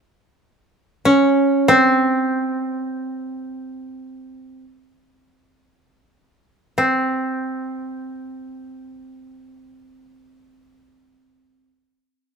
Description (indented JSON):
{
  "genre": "japanese traditional, Japanese chamber music",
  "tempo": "free time",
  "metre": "none",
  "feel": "none",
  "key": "unclear",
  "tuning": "A4 = 440 Hz",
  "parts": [
    { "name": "koto", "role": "solo", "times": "1.1-11.7 s", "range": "C4 to Db4", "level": "-18 LUFS", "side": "right 1 dB", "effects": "none" }
  ],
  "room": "moderate recital hall reverb, RT60 1.6 s",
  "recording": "none",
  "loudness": "-17 LUFS",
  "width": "side -6 dB against mid",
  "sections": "0.0-6.8 A section; 6.8-11.5 B section",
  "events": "slowing down 0.0-6.8",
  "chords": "none"
}